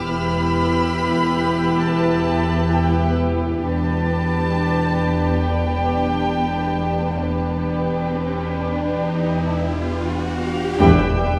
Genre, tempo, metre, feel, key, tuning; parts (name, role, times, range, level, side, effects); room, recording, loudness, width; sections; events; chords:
cinematic, suspense film score; 67 BPM; 4/4; straight; A4 = 445 Hz
warm chamber violin section; melody; 0.0-11.3 s; B4 to B5; -29 LUFS; equal
rich studio violin section; second line; 0.0-11.4 s; G4 to G5; -30 LUFS; equal
warm chamber viola section; accompaniment; 0.0-11.3 s; B3 to B4; -28 LUFS; equal
glassy FM pad; sustained chords; 0.0-11.4 s; E4 to G5; -30 LUFS; equal; ensemble chorus, built-in reverb
dark chamber cello section; bass; 0.0-11.3 s; E2; -27 LUFS; equal
dark studio double bass section; bass; 0.0-11.3 s; E1; -28 LUFS; equal
deep rumbling drone; drone; 0.0-11.4 s; E2; -31 LUFS; equal; built-in reverb
concert harp; texture; 0.0-10.8 s; B4 to D6; -38 LUFS; equal
warm chamber violin section; texture; 0.0-11.4 s; G5 to B6; -38 LUFS; equal
riser and impact; sound effects; 6.6-11.4 s; -32 LUFS; equal
mellow clarinet; second line; 10.3-11.4 s; F4 to G4; -26 LUFS; equal
dark chamber cello section; riff; 10.8-11.4 s; E2; -26 LUFS; equal
wet recital hall reverb, RT60 1.3 s; recorded in a church or concert hall; -20 LUFS; mono
0.0-10.8 A section
riser 6.6-10.8; band accent 10.8-11.4; impact 10.8-11.4
0.0 Em; 3.6 Gadd9/E